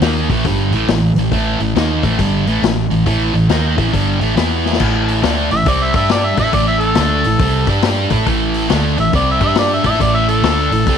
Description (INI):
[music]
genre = blues rock power trio and southern rock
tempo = 138 BPM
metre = 4/4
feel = swing 64% on 8ths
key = A minor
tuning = A4 = 440 Hz
[part]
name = thick fuzz guitar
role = riff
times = 0.0-11.0 s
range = G2 to A4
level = -16 LUFS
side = right 1 dB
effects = distortion
[part]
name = vintage muted fingered electric bass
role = bass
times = 0.0-11.0 s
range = G1 to A2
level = -19 LUFS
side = right 1 dB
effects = none
[part]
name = vintage drum kit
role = drums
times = 0.0-11.0 s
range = crash cymbal, hi-hat, kick drum, snare drum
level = -19 LUFS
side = left 5 dB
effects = none
[part]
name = overdriven harmonica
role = melody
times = 5.5-11.0 s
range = A4 to E5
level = -17 LUFS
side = equal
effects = tape echo
[sound]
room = light reverb, studio reverb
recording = 1960s-style stereo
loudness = -12 LUFS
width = side -8 dB against mid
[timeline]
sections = 0.0-4.8 A section; 4.8-11.0 B section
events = drum fill 4.6; harmonica solo 4.8-11.0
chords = 0.0 A5; 4.4 E5; 4.8 Am; 5.9 G5; 6.3 Am; 7.6 G5; 8.1 Am; 9.4 G5; 9.8 Am